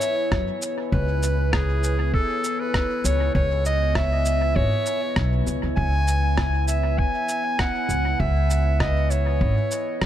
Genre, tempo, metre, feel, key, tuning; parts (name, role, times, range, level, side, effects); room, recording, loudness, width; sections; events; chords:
ambient dub; 99 BPM; 4/4; swing 55% on 16ths; C# minor; A4 = 440 Hz
clear clarinet; melody; 0.0-10.1 s; G#4 to G#5; -25 LUFS; equal; dub echo
deep dark ambient pad; sustained chords; 0.0-10.1 s; B3 to G#5; -30 LUFS; equal; chorus, built-in reverb
electronic shaker and rim click; drums; 0.0-10.1 s; -31 LUFS; equal; dub echo
upright bass; bass; 0.3-10.1 s; G#1 to F#2; -22 LUFS; equal
electronic kick drum; drums; 0.3-10.1 s; -25 LUFS; equal
light reverb, small room ambience; -20 LUFS; side -11 dB against mid
0.0-10.1 A section
0.0 C#m7